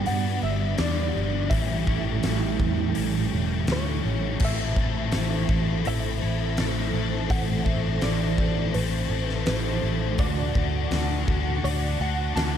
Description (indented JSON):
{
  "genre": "rock, shoegaze and dream pop",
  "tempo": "83 BPM",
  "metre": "4/4",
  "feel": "straight",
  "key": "unclear",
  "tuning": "A4 = 440 Hz",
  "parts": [
    { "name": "direct-recorded clean electric guitar", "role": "melody", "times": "0.0-12.6 s", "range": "C5 to A5", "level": "-34 LUFS", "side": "right 2 dB", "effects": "ensemble chorus, slapback echo" },
    { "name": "phased string machine", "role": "sustained chords", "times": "0.0-12.6 s", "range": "F#4 to C#6", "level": "-36 LUFS", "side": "right 2 dB", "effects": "ensemble chorus, phaser" },
    { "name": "picked twelve-string acoustic guitar", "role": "arpeggios", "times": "0.0-12.6 s", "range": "E3 to G4", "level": "-35 LUFS", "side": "right 4 dB", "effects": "none" },
    { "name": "biting overdriven guitar", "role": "riff", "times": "0.0-12.6 s", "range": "G2 to A4", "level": "-30 LUFS", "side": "left 11 dB", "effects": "analog chorus" },
    { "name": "clean electric guitar", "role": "riff", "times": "0.0-4.4, 10.2-12.6 s", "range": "A2 to G4", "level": "-32 LUFS", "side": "right 12 dB", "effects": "reverse reverb" },
    { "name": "vintage muted fingered electric bass", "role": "bass", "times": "0.1-12.6 s", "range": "E1 to G2", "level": "-27 LUFS", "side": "equal", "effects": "none" },
    { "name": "huge arena drum kit", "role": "drums", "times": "0.1-12.5 s", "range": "crash cymbal, hi-hat, kick drum, snare drum", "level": "-28 LUFS", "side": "equal", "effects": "none" }
  ],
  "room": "studio ambience",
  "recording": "dark, warm production",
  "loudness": "-22 LUFS",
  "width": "side -9 dB against mid",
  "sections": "0.0-4.4 A section; 4.4-12.6 B section",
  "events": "none",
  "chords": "0.0 Gmaj7; 1.5 A7; 4.4 Amadd9; 10.2 Dmaj7"
}